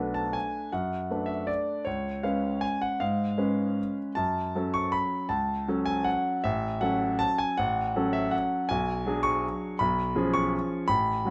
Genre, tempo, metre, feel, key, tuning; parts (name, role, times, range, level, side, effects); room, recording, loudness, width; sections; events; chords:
classical, piano waltz; 159 BPM; 3/4; uneven beats, rubato; F# minor; A4 = 438 Hz
clear concert grand piano; solo; 0.0-11.3 s; A1 to C#6; -28 LUFS; equal
moderate stone room reverb, RT60 1.2 s; -28 LUFS; mono
0.0-11.3 A section
0.0 Bm7; 1.9 C#7; 4.2 F#m; 6.4 F#m/A; 8.7 G#m7b5/B; 9.8 C#7/B